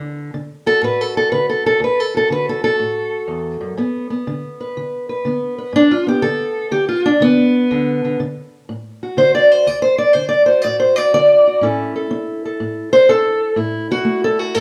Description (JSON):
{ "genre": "acoustic country blues, solo or duo", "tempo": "122 BPM", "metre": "4/4", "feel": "swing 67% on 8ths", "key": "D major", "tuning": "A4 = 439 Hz", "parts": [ { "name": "fingerpicked steel-string acoustic guitar", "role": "solo", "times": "0.0-14.6 s", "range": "D2 to D5", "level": "-16 LUFS", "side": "equal", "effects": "none" } ], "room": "moderate large studio reverb, RT60 1.2 s", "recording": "band playing live in one room", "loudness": "-16 LUFS", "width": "mono", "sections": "0.0-14.6 A section", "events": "steel-string acoustic guitar solo 0.0-14.6", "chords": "0.0 D; 3.8 G; 7.7 D; 11.6 A", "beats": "0.33 0.83 1.32 | 1.81 2.31 2.80 3.29 | 3.78 4.27 4.76 5.25 | 5.74 6.23 6.72 7.21 | 7.70 8.19 8.68 9.17 | 9.66 10.15 10.64 11.12 | 11.61 12.10 12.59 13.08 | 13.57 14.06 14.55" }